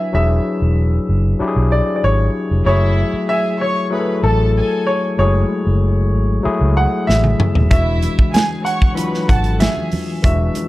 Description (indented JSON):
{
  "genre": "lush 1970s-style soul",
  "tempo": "95 BPM",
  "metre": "4/4",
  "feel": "straight",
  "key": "unclear",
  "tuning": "A4 = 440 Hz",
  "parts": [
    { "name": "clear baby grand piano", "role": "melody", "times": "0.0-10.7 s", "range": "A4 to G#5", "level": "-21 LUFS", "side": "equal", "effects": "none" },
    { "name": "overdriven tine electric piano", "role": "accompaniment", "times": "0.0-10.7 s", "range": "E3 to B4", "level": "-20 LUFS", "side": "left 3 dB", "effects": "none" },
    { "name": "vintage muted fingered electric bass", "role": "bass", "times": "0.1-10.5 s", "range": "D#1 to C#2", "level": "-16 LUFS", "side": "equal", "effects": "none" },
    { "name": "warm studio violin section", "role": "second line", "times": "2.7-10.1 s", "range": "E4 to C#6", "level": "-26 LUFS", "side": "equal", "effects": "analog delay" },
    { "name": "modern studio drum kit", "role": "drums", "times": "7.1-10.7 s", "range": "hi-hat, kick drum, snare drum, toms", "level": "-16 LUFS", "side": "equal", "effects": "none" },
    { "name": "congas", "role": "percussion", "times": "7.7-10.7 s", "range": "none", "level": "-27 LUFS", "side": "right 2 dB", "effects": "none" }
  ],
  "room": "light reverb, small room reverb",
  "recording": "dark, warm production",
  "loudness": "-14 LUFS",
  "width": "side -17 dB against mid",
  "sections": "0.0-10.7 A section",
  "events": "drum fill 7.1-7.7",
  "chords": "0.0 E9; 2.7 F#m9; 7.7 E9"
}